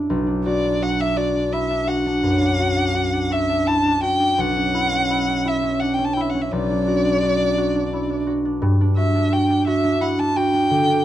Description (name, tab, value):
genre	classical, impressionist duo for violin and harp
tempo	57 BPM (dotted quarters)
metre	12/8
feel	rubato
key	B minor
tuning	A4 = 439 Hz
part	concert harp	accompaniment	0.0-11.0 s	B1 to F#4	-19 LUFS	equal	none
part	rich violin	melody	0.5-11.0 s	D5 to A5	-22 LUFS	left 1 dB	none
room	moderate studio reverb, RT60 0.6 s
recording	dark, warm production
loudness	-18 LUFS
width	side -12 dB against mid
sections	0.1-11.0 A section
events	none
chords	0.0 Bmadd11; 4.4 Bmadd9; 6.5 Dmaj7/B; 8.6 G5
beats	| 0.09 1.17 2.23 3.32 | 4.40 5.47 6.52 7.57 | 8.62 9.67 10.71